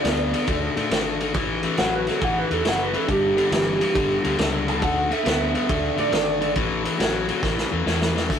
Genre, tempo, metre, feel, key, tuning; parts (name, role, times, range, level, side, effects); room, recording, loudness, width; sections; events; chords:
electric blues shuffle; 138 BPM; 4/4; swing 67% on 8ths; A4 = 440 Hz
electric guitar through a small old amp; second line; 0.0-6.6 s; G4 to A5; -24 LUFS; right 2 dB; spring reverb
overdriven electric guitar; riff; 0.0-8.4 s; G2 to B3; -24 LUFS; left 4 dB
vintage muted fingered electric bass; bass; 0.0-8.4 s; F#1 to A2; -30 LUFS; equal
vintage drum kit; drums; 0.0-8.4 s; hi-hat, kick drum, ride cymbal, snare drum; -25 LUFS; right 1 dB
moderate studio reverb, RT60 0.6 s; rough rehearsal-room recording; -20 LUFS; side -8 dB against mid
0.0-8.3 A section
clean electric guitar solo 0.0-8.3; drum fill 7.4-8.3
0.0 D5; 1.4 A5; 3.1 G5; 4.8 Dsus2; 6.6 A5